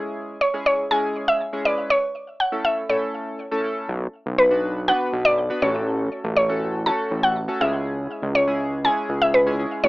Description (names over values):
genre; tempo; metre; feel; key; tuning
dance-pop; 121 BPM; 4/4; straight; unclear; A4 = 443 Hz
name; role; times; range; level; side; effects
chorused retro synth keys; accompaniment; 0.0-9.8 s; G#3 to B4; -26 LUFS; equal; none
mallet-like synth pluck; melody; 0.4-9.9 s; B4 to A5; -20 LUFS; equal; chorus
fat analog bass; bass; 3.9-9.9 s; A1 to C#2; -25 LUFS; equal; none
room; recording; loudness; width
moderate small room ambience, RT60 0.5 s; rough home demo mix, AM radio sound; -20 LUFS; side -20 dB against mid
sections
0.0-9.9 A section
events
none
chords
0.0 C#m; 1.9 A; 3.9 Bm; 5.6 F#m/A; 7.6 C#m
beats
0.41 0.91 1.41 | 1.90 2.40 2.90 3.39 | 3.89 4.38 4.88 5.37 | 5.87 6.37 6.86 7.36 | 7.85 8.35 8.85 9.34 | 9.84